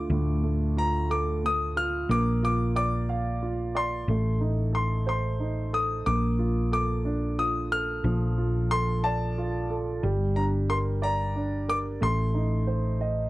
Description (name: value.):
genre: six-eight pop ballad.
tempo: 60 BPM (dotted quarters).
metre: 6/8.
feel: straight.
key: unclear.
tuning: A4 = 440 Hz.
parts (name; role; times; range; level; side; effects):
clear concert grand piano; melody; 0.0-13.3 s; A5 to F6; -30 LUFS; left 2 dB; none.
dark upright piano; accompaniment; 0.0-13.3 s; A2 to F5; -30 LUFS; right 3 dB; none.
hollow-body short-scale fingered electric bass; bass; 0.0-13.3 s; G1 to D2; -27 LUFS; left 1 dB; none.
room: little or no reverb.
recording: dry, close 1970s-style studio recording.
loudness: -24 LUFS.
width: side -18 dB against mid.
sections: 0.0-13.3 A section.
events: none.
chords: 0.0 Dm; 2.1 Bb; 4.1 Adim; 6.1 Bbmaj7; 10.0 Gm; 12.0 Adim.